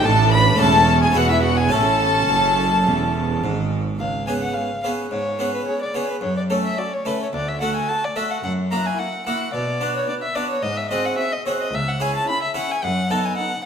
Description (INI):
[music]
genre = classical, baroque-style concerto movement with solo episodes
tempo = 108 BPM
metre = 4/4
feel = straight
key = unclear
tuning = A4 = 440 Hz
[part]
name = rich symphonic violin section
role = melody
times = 0.0-13.7 s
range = F#4 to B5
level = -24 LUFS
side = left 6 dB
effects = none
[part]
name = rich violin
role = melody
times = 0.0-13.6 s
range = B4 to B5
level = -23 LUFS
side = left 1 dB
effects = none
[part]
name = warm chamber violin section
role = second line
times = 0.0-13.7 s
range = D4 to B4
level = -26 LUFS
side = left 2 dB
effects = none
[part]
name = harpsichord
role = accompaniment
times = 0.0-13.5 s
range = C#2 to A4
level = -24 LUFS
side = equal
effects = none
[part]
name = rich chamber viola section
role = accompaniment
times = 0.0-13.7 s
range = G#3 to D4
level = -29 LUFS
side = right 2 dB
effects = none
[part]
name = clear chamber cello section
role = bass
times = 0.0-13.3 s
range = C#2 to B2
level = -27 LUFS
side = right 4 dB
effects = none
[part]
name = warm chamber double bass section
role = bass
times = 0.0-4.0 s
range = E1 to A1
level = -22 LUFS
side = right 4 dB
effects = none
[sound]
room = wet recital hall reverb, RT60 1.7 s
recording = none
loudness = -18 LUFS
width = side -7 dB against mid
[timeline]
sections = 0.0-4.0 A section; 4.0-13.7 B section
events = none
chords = 0.0 F7 (rootless); 0.6 A/E; 1.2 E; 1.7 A; 4.0 C#5; 6.2 F#m; 7.3 D; 8.4 F#7; 9.5 Bm; 10.6 G#7; 11.7 C#m; 12.8 B7/F#